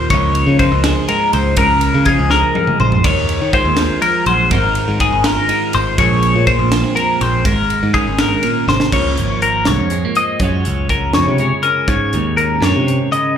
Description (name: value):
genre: math rock and midwest emo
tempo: 82 BPM (dotted quarters)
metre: 6/8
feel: straight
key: Db major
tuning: A4 = 440 Hz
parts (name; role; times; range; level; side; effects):
- twelve-string electric guitar; accompaniment; 0.0-13.4 s; F2 to Ab4; -19 LUFS; right 7 dB; slapback echo
- twelve-string electric guitar; arpeggios; 0.0-13.4 s; Ab4 to Eb5; -16 LUFS; left 4 dB; phaser, slapback echo
- modern bright picked electric bass; bass; 0.0-13.0 s; Ab1 to Eb3; -17 LUFS; equal; none
- crisp fusion drum kit; drums; 0.1-13.2 s; crash cymbal, hi-hat, kick drum, ride cymbal, snare drum, toms; -20 LUFS; equal; none
room: small room reverb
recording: live gig heard through the venue's PA, club reverb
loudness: -12 LUFS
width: side -8 dB against mid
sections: 0.0-8.9 A section; 8.9-13.4 B section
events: drum fill 2.3-3.0, 8.7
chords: 0.1 Db69; 3.0 Eb9sus4; 4.5 Ab69; 6.0 Bbm9; 7.5 Absus24; 8.9 Dbmaj13; 10.4 Gbmaj9; 11.9 Absus4